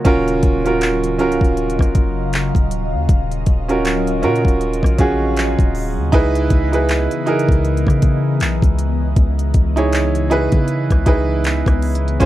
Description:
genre	contemporary R&B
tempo	79 BPM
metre	4/4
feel	swing 58% on 16ths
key	unclear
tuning	A4 = 439 Hz
part	clear baby grand piano	accompaniment	0.0-12.3 s	Db4 to Db5	-19 LUFS	right 2 dB	none
part	ethereal airy pad	sustained chords	0.1-12.3 s	Db3 to F5	-25 LUFS	left 2 dB	ensemble chorus, built-in reverb, phaser
part	long sustained 808-style bass	bass	0.1-12.3 s	Db1 to Db3	-20 LUFS	equal	none
part	trap drum kit	drums	0.1-12.3 s	handclaps, hi-hat, kick drum, rim click	-16 LUFS	equal	none
room	light reverb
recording	dark, warm production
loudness	-14 LUFS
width	side -14 dB against mid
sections	0.1-12.3 A section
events	none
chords	0.1 Ebm9; 6.1 Dbm9

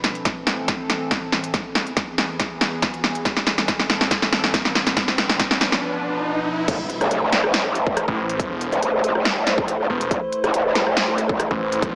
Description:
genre	heavy wobble dubstep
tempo	140 BPM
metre	4/4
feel	half-time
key	A harmonic minor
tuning	A4 = 439 Hz
part	evolving wavetable pad	sustained chords	0.0-12.0 s	E2 to C5	-30 LUFS	equal	chorus, built-in reverb, sidechain pumping
part	big-room dance drum kit	drums	0.0-11.9 s	crash cymbal, hi-hat, rim click, snare drum	-23 LUFS	equal	none
part	riser and impact	sound effects	2.5-8.4 s	none	-32 LUFS	equal	none
part	electronic kick drum	drums	0.3-11.9 s	none	-30 LUFS	equal	overdrive
part	growl bass	bass	6.7-11.5 s	A1	-23 LUFS	equal	chorus, overdrive
part	snarling distorted saw bass	bass	8.1-11.9 s	E1 to A1	-27 LUFS	equal	distortion, overdrive
room	moderate digital room reverb, RT60 1.1 s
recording	small speaker sound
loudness	-21 LUFS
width	mono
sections	0.0-6.7 A section; 6.7-12.0 B section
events	build-up 0.0-6.7; drum fill 0.0-5.8; riser 2.5-6.7; break 5.8-6.7; drop 6.7-12.0; impact 6.7-8.4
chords	0.0 Am; 1.5 E; 3.3 Am; 5.0 Bdim; 6.7 Amadd9

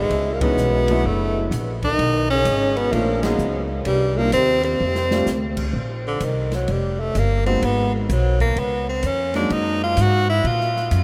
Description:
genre	jazz, small-group swing and bop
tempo	128 BPM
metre	4/4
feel	swing 66% on 8ths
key	unclear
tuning	A4 = 435 Hz
part	edgy tenor saxophone	melody	0.0-11.0 s	D3 to Gb4	-24 LUFS	equal	none
part	mellow trombone	second line	0.0-5.5 s	G2 to Eb3	-30 LUFS	equal	none
part	upright bass	bass	0.0-11.0 s	F1 to Bb2	-25 LUFS	equal	none
part	open jazz drum kit	drums	0.1-11.0 s	crash cymbal, hi-hat, kick drum, ride cymbal, snare drum	-35 LUFS	equal	none
part	clear grand piano	accompaniment	0.4-10.0 s	Fb3 to Gb4	-30 LUFS	equal	none
room	wet huge ambient reverb, RT60 8.5 s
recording	in a vast, echoing space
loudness	-20 LUFS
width	mono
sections	0.0-5.7 A section; 5.7-11.0 B section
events	band accent 0.3, 3.2; drum fill 4.8-5.3; tenor saxophone solo 5.7-11.0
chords	0.1 Dbm9; 1.0 Gb7alt; 2.0 Bmaj9; 3.9 Cm7; 4.8 F69; 5.7 Bbsus2; 7.6 Abm7; 8.6 Db; 9.5 Gb69

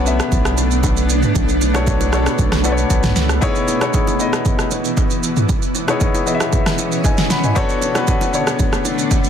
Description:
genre	amapiano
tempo	116 BPM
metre	4/4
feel	straight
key	unclear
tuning	A4 = 442 Hz
part	warm concert grand piano	accompaniment	0.0-9.3 s	B3 to B5	-21 LUFS	left 4 dB	none
part	granular cloud pad	sustained chords	0.0-9.3 s	B2 to D4	-21 LUFS	right 1 dB	built-in reverb, sidechain pumping
part	saturated sub bass	bass	0.0-3.4 s	B1 to C#2	-19 LUFS	equal	none
part	deep house drum kit	drums	0.1-9.3 s	kick drum, rim click, shaker, snare drum, toms	-18 LUFS	right 1 dB	soft clipping on snare
part	congas and bongos	percussion	0.3-9.2 s	none	-27 LUFS	right 3 dB	none
room	digital ambience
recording	dense, heavily limited modern master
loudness	-14 LUFS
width	side -8 dB against mid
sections	0.0-9.3 A section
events	none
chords	0.0 Bm9; 3.4 C#m9; 7.6 Bm9

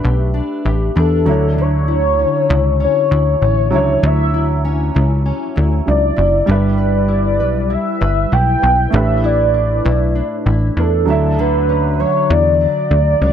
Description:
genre	indie pop, bedroom pop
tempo	98 BPM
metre	4/4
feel	straight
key	D major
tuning	A4 = 441 Hz
part	nylon-string guitar	accompaniment	0.0-13.3 s	A2 to B4	-21 LUFS	left 3 dB	analog chorus, warbly pitch drift
part	warm upright piano	accompaniment	0.0-13.3 s	F#3 to E5	-23 LUFS	right 6 dB	cassette tape
part	plucky analog bass	bass	0.0-13.3 s	F#1 to E2	-15 LUFS	equal	none
part	warm velvety synth lead	melody	1.0-13.3 s	A4 to G5	-17 LUFS	left 1 dB	lush chorus
room	light reverb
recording	none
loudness	-13 LUFS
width	side -9 dB against mid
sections	0.0-13.3 A section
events	none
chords	0.0 A9sus4; 1.3 Dmaj9; 6.5 G6; 8.9 A9sus4; 11.1 Dmaj9

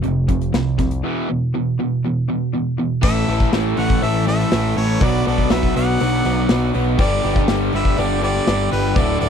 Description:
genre	classic rock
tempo	121 BPM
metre	4/4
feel	straight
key	unclear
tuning	A4 = 440 Hz
part	cranked stack guitar	riff	0.0-9.3 s	D2 to B3	-22 LUFS	right 10 dB	overdrive
part	overdriven electric guitar	riff	0.0-9.3 s	D2 to B3	-24 LUFS	left 13 dB	none
part	growling picked electric bass	bass	0.0-9.3 s	D1 to C2	-22 LUFS	left 1 dB	overdrive
part	big rock drum kit	drums	0.0-9.3 s	crash cymbal, hi-hat, kick drum, snare drum	-20 LUFS	left 1 dB	none
part	clear harmonica	melody	3.0-9.3 s	B4 to F#5	-24 LUFS	equal	slapback echo
part	octave-fuzz lead guitar	second line	3.0-9.3 s	G4 to D5	-31 LUFS	right 2 dB	distortion
part	overdriven electric guitar	riff	3.0-9.3 s	D2 to B4	-25 LUFS	left 1 dB	spring reverb
part	cowbell	percussion	3.0-9.3 s	none	-33 LUFS	left 26 dB	none
room	little or no reverb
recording	dry, close 1970s-style studio recording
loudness	-16 LUFS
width	side -7 dB against mid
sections	0.0-3.0 A section; 3.0-9.3 B section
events	break 1.0-3.0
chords	0.0 F5; 1.0 E5; 3.0 A; 5.0 Bm; 7.0 G

